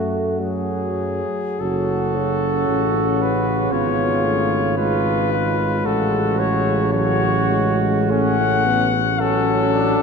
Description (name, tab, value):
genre	classical, hymn-like piece for brass band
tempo	48-59 BPM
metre	4/4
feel	rubato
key	F# minor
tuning	A4 = 441 Hz
part	warm cornet	melody	0.0-10.0 s	F#4 to F#5	-22 LUFS	left 6 dB	none
part	clear flugelhorn	second line	0.0-10.0 s	C#4 to F#4	-24 LUFS	right 8 dB	none
part	clear trombone	accompaniment	0.0-10.0 s	C#3 to A3	-25 LUFS	right 3 dB	none
part	mellow euphonium	accompaniment	0.0-10.0 s	F#3 to C#4	-24 LUFS	left 3 dB	none
part	dark tuba	bass	0.0-9.9 s	F#1 to F#2	-23 LUFS	right 1 dB	none
room	wet cathedral reverb, RT60 5.0 s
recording	dark, warm production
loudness	-17 LUFS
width	side -5 dB against mid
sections	0.0-1.6 A section; 1.6-10.0 B section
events	none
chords	0.0 F#m; 3.7 C#7/G#; 5.9 F#m/A